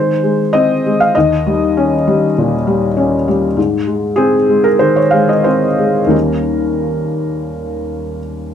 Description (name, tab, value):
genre	neoclassical minimalist piano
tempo	86-100 BPM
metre	4/4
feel	rubato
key	Ab major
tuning	A4 = 440 Hz
part	felt-muted upright piano	solo	0.0-8.5 s	Eb2 to F5	-12 LUFS	left 1 dB	none
room	moderate small room reverb, RT60 0.6 s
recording	none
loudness	-11 LUFS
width	side -8 dB against mid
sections	0.0-8.5 A section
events	none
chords	0.0 Ab; 1.2 Eb7; 3.6 Ab; 6.1 Eb7